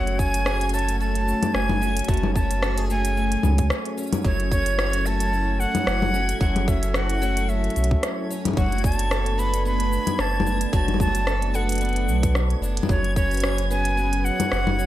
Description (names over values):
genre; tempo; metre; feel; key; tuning
folktronica; 111 BPM; 4/4; swing 56% on 16ths; F# minor; A4 = 441 Hz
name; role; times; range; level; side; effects
breathy bright concert flute; melody; 0.0-14.9 s; C#5 to B5; -27 LUFS; equal; ping-pong delay
warm analog pad; sustained chords; 0.0-14.9 s; F#3 to B4; -31 LUFS; equal; chorus
picked twelve-string acoustic guitar; arpeggios; 0.0-14.9 s; F#2 to A4; -30 LUFS; right 1 dB; none
warm sub bass; bass; 0.0-14.9 s; F#1 to C#2; -24 LUFS; equal; none
backwards swelling texture; texture; 0.0-14.9 s; G#6; -37 LUFS; right 2 dB; built-in reverb
organic electronic drum kit; drums; 0.1-14.9 s; congas, hi-hat, rim click, shaker; -27 LUFS; left 2 dB; none
electronic kick drum; drums; 0.2-13.3 s; none; -23 LUFS; equal; none
room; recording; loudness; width
digital ambience; none; -20 LUFS; side -14 dB against mid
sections
0.0-14.9 A section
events
break 3.7-4.2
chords
0.0 Amaj7/F#; 4.2 F#m7; 8.6 Bm7/F#; 12.9 C#7sus4/F#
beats
0.47 1.00 1.55 | 2.09 2.63 3.17 3.71 | 4.25 4.79 5.33 5.87 | 6.41 6.95 7.49 8.03 | 8.57 9.11 9.65 10.19 | 10.73 11.28 11.82 12.36 | 12.90 13.44 13.98 14.52